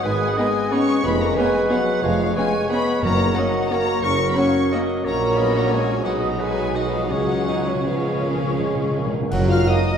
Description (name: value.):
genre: classical, orchestral ballroom waltz.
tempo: 152-194 BPM.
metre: 3/4.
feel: rubato.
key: F# major.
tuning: A4 = 439 Hz.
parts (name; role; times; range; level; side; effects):
rich chamber violin section; melody; 0.0-10.0 s; E#5 to E#6; -28 LUFS; left 4 dB; none.
clear oboe; second line; 0.0-10.0 s; A#4 to D#5; -31 LUFS; right 1 dB; none.
dark clarinet; second line; 0.0-10.0 s; G#4 to F#5; -29 LUFS; right 1 dB; none.
large flute ensemble; second line; 0.0-10.0 s; D#5 to D#6; -32 LUFS; equal; none.
warm French horn section; sustained chords; 0.0-10.0 s; E#3 to E#4; -24 LUFS; left 2 dB; none.
rich symphonic double bass section; bass; 0.0-9.6 s; E#1 to C#2; -29 LUFS; right 2 dB; none.
warm bassoon; accompaniment; 0.1-9.9 s; F#3 to D#4; -26 LUFS; right 1 dB; none.
rich studio cello section; bass; 0.1-9.6 s; E#2 to C#3; -29 LUFS; right 1 dB; none.
warm tuba; bass; 0.1-9.6 s; E#1 to C#2; -30 LUFS; right 2 dB; none.
rich chamber violin section; second line; 0.4-10.0 s; C#4 to E#5; -32 LUFS; left 2 dB; none.
rich chamber viola section; accompaniment; 0.4-9.8 s; G#3 to F#4; -29 LUFS; right 1 dB; none.
warm trombone section; sustained chords; 0.4-9.8 s; C#3 to B3; -34 LUFS; right 2 dB; none.
timpani; percussion; 3.0-3.5, 7.1-9.8 s; F#2 to C#3; -27 LUFS; left 1 dB; none.
clash cymbals and concert bass drum; percussion; 9.3-10.0 s; none; -30 LUFS; left 1 dB; none.
warm trumpet section; stabs; 9.5-10.0 s; D#5 to E#5; -27 LUFS; right 2 dB; none.
room: wet scoring stage reverb, RT60 1.9 s.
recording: recorded in a church or concert hall.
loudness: -18 LUFS.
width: side -7 dB against mid.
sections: 0.0-9.3 A section.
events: timpani fill 7.1-9.3; band accent 9.3-9.7.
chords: 0.0 G#m; 1.0 C#7/E#; 3.0 F#; 5.0 F#/A#; 6.1 B6; 7.1 C#; 9.3 F#.